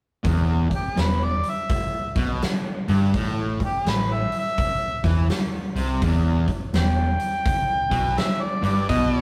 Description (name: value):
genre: blues rock power trio and southern rock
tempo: 83 BPM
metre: 4/4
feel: swing 64% on 8ths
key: unclear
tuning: A4 = 440 Hz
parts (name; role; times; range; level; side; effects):
- fuzz guitar; riff; 0.2-9.2 s; E2 to E3; -27 LUFS; equal; distortion
- vintage muted picked electric bass; bass; 0.2-9.2 s; E1 to E2; -27 LUFS; equal; none
- big rock drum kit; drums; 0.2-9.1 s; hi-hat, kick drum, snare drum; -28 LUFS; equal; none
- mellow harmonica; melody; 0.8-9.2 s; G4 to G5; -27 LUFS; equal; overdrive
room: moderate stone room reverb, RT60 1.3 s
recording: rough rehearsal-room recording, tube saturation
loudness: -23 LUFS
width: mono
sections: 0.2-9.2 A section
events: none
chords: 0.2 E5; 3.1 A5; 6.0 E5